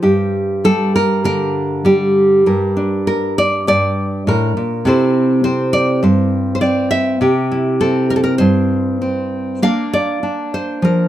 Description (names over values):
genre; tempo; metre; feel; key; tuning
folk, solo fingerstyle acoustic guitar; 100 BPM; 4/4; rubato; G dorian; A4 = 438 Hz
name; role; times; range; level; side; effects
nylon-string guitar; solo; 0.0-11.1 s; G2 to F5; -13 LUFS; equal; none
room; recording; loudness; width
light reverb; none; -13 LUFS; side -12 dB against mid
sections
0.0-11.1 A section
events
none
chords
0.0 Gmadd9; 4.9 C6; 9.6 Bb